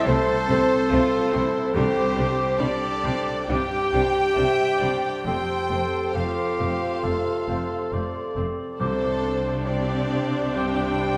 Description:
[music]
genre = cinematic, emotional film score for orchestra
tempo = 66-72 BPM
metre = 4/4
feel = rubato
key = unclear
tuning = A4 = 440 Hz
[part]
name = warm studio violin section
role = melody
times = 0.0-11.2 s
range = C5 to G5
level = -34 LUFS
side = equal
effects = none
[part]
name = bright clarinet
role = second line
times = 0.0-11.2 s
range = C5 to G5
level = -32 LUFS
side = equal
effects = none
[part]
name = bright large flute ensemble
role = second line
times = 0.0-11.0 s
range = C6 to D6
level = -37 LUFS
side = equal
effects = none
[part]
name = mellow cor anglais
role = second line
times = 0.0-10.9 s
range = G4 to D5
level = -35 LUFS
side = equal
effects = none
[part]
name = warm studio violin section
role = second line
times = 0.0-11.2 s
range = E4 to E5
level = -36 LUFS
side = equal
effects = none
[part]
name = bright concert grand piano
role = accompaniment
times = 0.0-11.2 s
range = C2 to C5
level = -34 LUFS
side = equal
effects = none
[part]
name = dark French horn section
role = sustained chords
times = 0.0-11.2 s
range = C4 to G4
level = -30 LUFS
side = equal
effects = none
[part]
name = concert harp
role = arpeggios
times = 0.0-11.2 s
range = C3 to A5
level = -33 LUFS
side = equal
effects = none
[part]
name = warm studio viola section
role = accompaniment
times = 0.1-11.2 s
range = G3 to D4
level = -34 LUFS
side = equal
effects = none
[part]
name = rich studio double bass section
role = bass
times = 0.1-11.2 s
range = F1 to C2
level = -34 LUFS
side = equal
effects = none
[part]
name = warm studio cello section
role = bass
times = 0.1-11.2 s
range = F2 to C3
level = -34 LUFS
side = equal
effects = none
[part]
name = timpani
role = percussion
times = 1.8-3.0, 8.8-10.1 s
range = C3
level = -36 LUFS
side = equal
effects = none
[sound]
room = wet recital hall reverb, RT60 1.8 s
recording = none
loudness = -23 LUFS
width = mono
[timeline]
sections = 0.0-11.2 A section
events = none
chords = 0.0 Am/C; 1.8 Csus2; 5.3 F; 8.8 Csus2

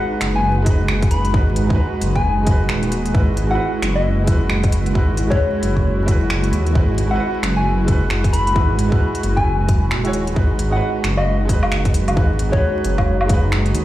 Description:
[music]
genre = future garage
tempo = 133 BPM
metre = 4/4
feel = swing 61% on 16ths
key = G# minor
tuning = A4 = 441 Hz
[part]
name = soft struck synth lead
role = melody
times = 0.0-13.1 s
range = C#5 to B5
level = -25 LUFS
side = left 2 dB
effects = chorus, vintage 12-bit sampler grit, ping-pong delay
[part]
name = bright upright piano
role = accompaniment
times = 0.0-13.8 s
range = G#3 to C#5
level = -25 LUFS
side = right 1 dB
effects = sidechain pumping, ping-pong delay
[part]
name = airy breathy pad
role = sustained chords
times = 0.0-13.8 s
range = G#3 to B4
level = -24 LUFS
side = right 2 dB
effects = chorus, sidechain pumping
[part]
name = dark detuned saw bass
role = bass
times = 0.2-13.8 s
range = D#1 to D#2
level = -19 LUFS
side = equal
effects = sidechain pumping
[part]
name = organic electronic drum kit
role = drums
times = 0.2-13.8 s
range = finger snaps, hi-hat, woodblock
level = -26 LUFS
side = equal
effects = none
[part]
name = electronic kick drum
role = drums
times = 0.7-13.4 s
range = none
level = -16 LUFS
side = equal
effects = none
[sound]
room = little or no reverb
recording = played on a big sound system in a bare room, large studio reverb, vinyl crackle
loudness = -15 LUFS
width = side -14 dB against mid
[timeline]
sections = 0.0-13.8 A section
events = none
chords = 0.0 G#m7; 3.1 Eadd9; 10.4 G#m7

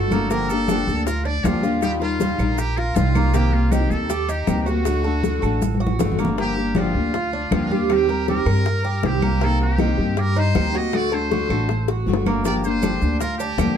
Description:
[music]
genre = latin, Cuban son and guajira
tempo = 158 BPM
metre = 4/4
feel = straight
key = G minor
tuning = A4 = 439 Hz
[part]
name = trumpet with metal mute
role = melody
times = 0.0-13.8 s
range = F4 to Eb5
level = -28 LUFS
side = right 1 dB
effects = none
[part]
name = picked steel-string acoustic guitar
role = accompaniment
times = 0.0-13.8 s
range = C3 to G4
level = -24 LUFS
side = left 4 dB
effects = none
[part]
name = Cuban tres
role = arpeggios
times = 0.0-13.8 s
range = Bb3 to Bb4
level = -26 LUFS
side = right 5 dB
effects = none
[part]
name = upright bass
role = bass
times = 0.0-13.8 s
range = G1 to G2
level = -23 LUFS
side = right 1 dB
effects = none
[part]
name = bongos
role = percussion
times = 0.1-13.8 s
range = none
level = -28 LUFS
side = left 9 dB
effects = none
[part]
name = claves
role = percussion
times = 0.1-13.8 s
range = none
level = -40 LUFS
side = right 4 dB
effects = none
[part]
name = congas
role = percussion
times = 0.1-13.8 s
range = none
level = -27 LUFS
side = left 1 dB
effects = none
[part]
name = maracas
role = percussion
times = 0.1-6.4, 12.4-13.8 s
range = none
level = -40 LUFS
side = right 9 dB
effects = none
[sound]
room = light reverb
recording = dark, warm production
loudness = -18 LUFS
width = side -8 dB against mid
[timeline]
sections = 0.0-6.4 A section; 6.4-13.8 A section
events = drum fill 5.6-6.4, 11.9-12.4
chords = 0.3 Gm7; 1.8 Ebadd9; 3.3 Cm7; 4.9 D; 6.4 Gm7; 7.9 Eb6; 9.4 Cm7; 10.9 D; 12.4 Gm7

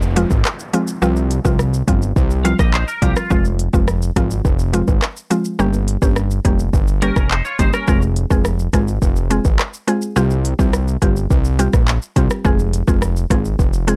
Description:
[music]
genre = dancehall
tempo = 105 BPM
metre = 4/4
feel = straight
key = F minor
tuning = A4 = 441 Hz
[part]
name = fat analog bass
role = bass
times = 0.0-14.0 s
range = F1 to C2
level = -21 LUFS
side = equal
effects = none
[part]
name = afro-pop drum kit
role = drums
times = 0.0-14.0 s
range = handclaps, hi-hat, kick drum, rim click, shaker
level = -20 LUFS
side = equal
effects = none
[part]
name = downlifter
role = sound effects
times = 0.0-3.3 s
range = none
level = -38 LUFS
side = equal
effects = none
[part]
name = mallet-like synth pluck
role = accompaniment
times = 0.2-14.0 s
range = F3 to Ab4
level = -22 LUFS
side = equal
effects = chorus
[part]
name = bongos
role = percussion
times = 0.2-14.0 s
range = none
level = -33 LUFS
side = equal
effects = none
[part]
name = twangy electric guitar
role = arpeggios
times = 2.4-3.4, 7.0-8.0 s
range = Bb3 to F5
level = -25 LUFS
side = equal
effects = ensemble chorus
[sound]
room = little or no reverb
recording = dark, warm production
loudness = -17 LUFS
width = mono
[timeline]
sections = 0.0-14.0 A section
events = none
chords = 0.0 Fm; 1.0 Csus4; 3.3 Fm; 5.6 Gdim; 7.9 Fm; 10.2 Csus4; 12.4 Fm

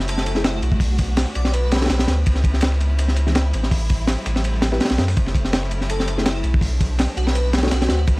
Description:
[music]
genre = drum and bass, jungle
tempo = 165 BPM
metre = 4/4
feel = swing 54% on 16ths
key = unclear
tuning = A4 = 438 Hz
[part]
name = dark studio string section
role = sustained chords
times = 0.0-8.2 s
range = F#3 to F#4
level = -32 LUFS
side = equal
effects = none
[part]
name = saturated sub bass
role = bass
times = 0.0-8.2 s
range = F#1 to F#2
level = -20 LUFS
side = equal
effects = none
[part]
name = crunchy breakbeat drum kit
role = drums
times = 0.0-8.2 s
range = hi-hat, kick drum, ride cymbal, snare drum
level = -20 LUFS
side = equal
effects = none
[part]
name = airy dreamy lead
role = melody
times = 0.1-2.0, 5.9-8.0 s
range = E4 to D5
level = -30 LUFS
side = equal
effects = chorus, dub echo
[part]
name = dusty soul sampler-style drum kit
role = drums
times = 0.1-8.2 s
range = hi-hat, snare drum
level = -35 LUFS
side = equal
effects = none
[part]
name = deep mellow chord stab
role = stabs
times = 0.4-7.7 s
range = E3 to C#5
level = -29 LUFS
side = left 2 dB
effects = none
[sound]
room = little or no reverb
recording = dry, gritty hardware recording, vinyl crackle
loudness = -17 LUFS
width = side -23 dB against mid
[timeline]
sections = 0.0-8.2 A section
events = none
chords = 0.0 F#m7; 0.8 Bm7; 2.3 C#m7; 3.7 Am7; 5.2 F#m7; 6.6 Bm7

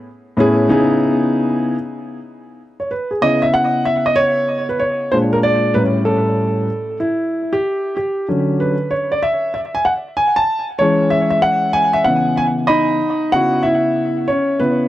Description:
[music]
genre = hip hop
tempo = 95 BPM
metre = 4/4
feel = swing 65% on 16ths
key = C# minor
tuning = A4 = 440 Hz
[part]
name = dark baby grand piano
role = solo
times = 0.4-14.9 s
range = A2 to B5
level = -14 LUFS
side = equal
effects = tape echo
[sound]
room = moderate booth ambience, RT60 0.2 s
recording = dark, warm production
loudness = -14 LUFS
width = side -14 dB against mid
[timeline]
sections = 0.0-3.2 A section; 3.2-13.3 B section; 13.3-14.9 C section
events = grand piano solo 3.2-13.3, 13.3-14.9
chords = 0.0 Amaj9; 0.7 C#m7; 5.1 A#7; 5.8 A7; 8.3 Dmaj7; 10.8 E6; 12.1 C#m9; 13.3 C#m7

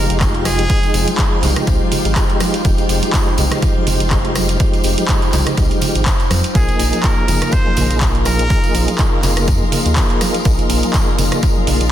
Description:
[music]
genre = deep house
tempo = 123 BPM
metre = 4/4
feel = swing 55% on 16ths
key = F minor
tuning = A4 = 439 Hz
[part]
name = trumpet with straight mute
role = melody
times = 0.0-1.1, 6.6-8.9 s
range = Ab4 to C5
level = -24 LUFS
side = equal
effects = digital delay
[part]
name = warbly tape-like pad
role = sustained chords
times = 0.0-11.9 s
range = Ab3 to G5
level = -26 LUFS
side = left 1 dB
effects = chorus, built-in reverb, sidechain pumping
[part]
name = mellow tonewheel organ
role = stabs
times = 0.0-11.9 s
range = F3 to Ab4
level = -21 LUFS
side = right 1 dB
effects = chorus vibrato, fast rotary speaker, sidechain pumping, digital delay
[part]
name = rubbery square bass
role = bass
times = 0.0-11.9 s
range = F1 to F2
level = -19 LUFS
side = equal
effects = tube saturation, sidechain pumping
[part]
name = airy breathy pad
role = texture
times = 0.0-11.9 s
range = F4 to C6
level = -29 LUFS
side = equal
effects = chorus, sidechain pumping
[part]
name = string machine, violins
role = texture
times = 0.0-11.9 s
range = F4 to Bb5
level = -32 LUFS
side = equal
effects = none
[part]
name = punchy analog drum machine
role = drums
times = 0.1-11.9 s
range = handclaps, hi-hat, rim click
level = -22 LUFS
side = right 1 dB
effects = none
[part]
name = tambourine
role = percussion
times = 0.1-11.9 s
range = none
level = -27 LUFS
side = left 3 dB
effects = none
[part]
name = electronic kick drum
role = drums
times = 0.2-11.5 s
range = none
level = -17 LUFS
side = equal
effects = none
[part]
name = congas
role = percussion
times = 0.4-11.8 s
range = none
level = -26 LUFS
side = right 3 dB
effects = none
[sound]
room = digital ambience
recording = dense, heavily limited modern master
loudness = -13 LUFS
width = side -11 dB against mid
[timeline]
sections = 0.0-11.9 A section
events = none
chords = 0.0 Fm9; 6.6 Bb7sus4

